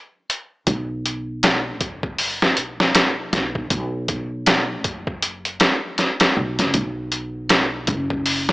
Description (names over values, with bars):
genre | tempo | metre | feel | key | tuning
trip hop | 79 BPM | 4/4 | swing 59% on 16ths | unclear | A4 = 439 Hz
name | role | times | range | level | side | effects
trip hop sampler-style drum kit | drums | 0.3-8.5 s | hi-hat, kick drum, snare drum | -18 LUFS | equal | none
upright bass | bass | 0.7-8.5 s | F#1 to B1 | -27 LUFS | equal | none
room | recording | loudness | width
light reverb | small speaker sound | -19 LUFS | side -21 dB against mid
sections
0.0-8.5 A section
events
none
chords
none